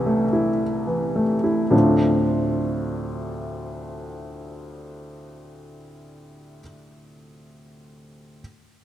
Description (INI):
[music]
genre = neoclassical minimalist piano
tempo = 54 BPM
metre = 4/4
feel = rubato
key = D minor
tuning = A4 = 440 Hz
[part]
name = clear upright piano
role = solo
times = 0.0-8.4 s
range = C2 to G4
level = -21 LUFS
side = equal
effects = none
[sound]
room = moderate lush hall reverb, RT60 2.6 s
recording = rough home demo mix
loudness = -19 LUFS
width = side -12 dB against mid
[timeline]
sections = 0.0-1.7 A section; 1.7-6.2 B section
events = slowing down 0.0-1.7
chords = 0.0 Am/C; 1.7 Dm7